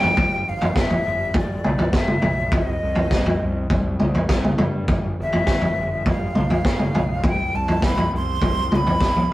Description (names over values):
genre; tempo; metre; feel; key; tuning
psychedelic rock; 102 BPM; 4/4; straight; G mixolydian; A4 = 440 Hz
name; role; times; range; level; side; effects
breathy bright jazz flute; melody; 0.0-9.3 s; D5 to C6; -24 LUFS; equal; none
fuzz picked electric bass; bass; 0.0-9.3 s; G1 to G2; -26 LUFS; equal; overdrive
vintage drum kit; drums; 0.0-9.3 s; kick drum, snare drum, toms; -20 LUFS; equal; none
room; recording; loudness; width
moderate small room reverb, RT60 0.6 s; rough rehearsal-room recording, warm saturation; -18 LUFS; side -16 dB against mid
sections
0.2-9.3 A section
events
drum fill 0.0, 9.0-9.3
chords
0.2 G; 2.5 Cm; 4.9 G; 7.2 Amadd9 (rootless)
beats
| 0.17 0.76 1.34 1.93 | 2.52 3.11 3.70 4.29 | 4.88 5.47 6.06 6.65 | 7.24 7.83 8.42 9.01